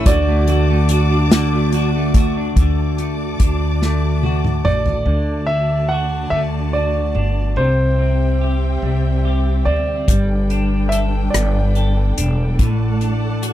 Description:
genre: six-eight pop ballad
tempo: 48 BPM (dotted quarters)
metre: 6/8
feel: straight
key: D major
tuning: A4 = 443 Hz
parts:
  - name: warm concert grand piano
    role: melody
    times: 0.0-13.5 s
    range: C5 to F#5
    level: -23 LUFS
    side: right 1 dB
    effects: none
  - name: clean electric guitar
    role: accompaniment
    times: 0.0-13.5 s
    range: A2 to A4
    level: -22 LUFS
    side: equal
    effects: double-tracked left and right
  - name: warm studio string section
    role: sustained chords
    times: 0.0-13.5 s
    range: C3 to D6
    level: -26 LUFS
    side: left 1 dB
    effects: none
  - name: fingerpicked steel-string acoustic guitar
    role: arpeggios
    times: 0.0-3.1 s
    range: A3 to F#4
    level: -25 LUFS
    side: right 11 dB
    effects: none
  - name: upright bass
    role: bass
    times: 0.1-13.5 s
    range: E1 to D2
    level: -18 LUFS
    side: equal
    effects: none
  - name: unplugged drum kit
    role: drums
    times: 0.1-5.1, 10.1-13.5 s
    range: hi-hat, kick drum, rim click, snare drum, toms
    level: -17 LUFS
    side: equal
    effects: none
room: little or no reverb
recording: dry, close 1970s-style studio recording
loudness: -15 LUFS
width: side -12 dB against mid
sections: 0.0-2.6 A section; 2.6-5.1 B section; 5.1-13.5 C section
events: drum fill 3.8-5.1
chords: 0.1 D; 7.6 C; 10.1 Gadd9; 12.6 D/A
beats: | 0.06 1.31 | 2.56 3.82 | 5.07 6.32 | 7.58 8.83 | 10.08 11.34 | 12.59

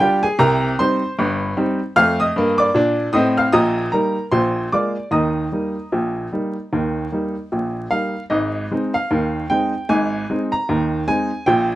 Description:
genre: ragtime piano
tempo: 76 BPM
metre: 2/4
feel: swing 60% on 16ths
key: unclear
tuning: A4 = 440 Hz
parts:
  - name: clear upright piano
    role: solo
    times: 0.0-11.8 s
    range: G1 to F6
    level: -17 LUFS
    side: equal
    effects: none
room: light reverb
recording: vinyl crackle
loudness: -17 LUFS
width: side -15 dB against mid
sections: 0.0-8.3 A section; 8.3-11.8 B section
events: none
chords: 0.4 Cm; 2.0 F7; 3.5 Eb/Bb; 4.3 Bb7; 5.1 Eb; 8.3 Ab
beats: | 0.40 1.19 | 1.97 2.76 | 3.55 4.34 | 5.13 5.92 | 6.72 7.51 | 8.31 9.10 | 9.89 10.68 | 11.46

